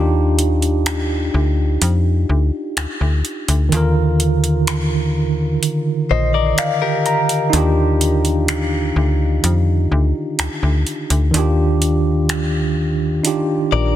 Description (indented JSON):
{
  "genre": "contemporary R&B",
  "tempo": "63 BPM",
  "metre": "4/4",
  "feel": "straight",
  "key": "Eb major",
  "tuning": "A4 = 440 Hz",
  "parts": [
    { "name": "tine electric piano", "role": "accompaniment", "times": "0.0-14.0 s", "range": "D3 to Bb5", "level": "-19 LUFS", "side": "right 2 dB", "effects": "medium stereo tremolo" },
    { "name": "slap-like FM bass", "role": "bass", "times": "0.0-14.0 s", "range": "Bb1 to F2", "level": "-17 LUFS", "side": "left 1 dB", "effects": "none" },
    { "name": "booming analog drum machine", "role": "drums", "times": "0.4-13.5 s", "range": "finger snaps, hi-hat", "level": "-23 LUFS", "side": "right 1 dB", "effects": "soft clipping on snare" },
    { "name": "direct-recorded clean electric guitar", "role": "arpeggios", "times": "6.1-14.0 s", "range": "G4 to D5", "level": "-22 LUFS", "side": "left 12 dB", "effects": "tape echo" }
  ],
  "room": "light reverb",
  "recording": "dense, heavily limited modern master",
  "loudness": "-15 LUFS",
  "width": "side -12 dB against mid",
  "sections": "0.0-14.0 A section",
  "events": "break 0.0-14.0; tine electric piano fill 5.6-7.5",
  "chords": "0.0 Ebmaj9",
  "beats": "0.86 1.82 2.77 | 3.72 4.67 5.63 6.58 | 7.53 8.48 9.44 10.39 | 11.34 12.29 13.24"
}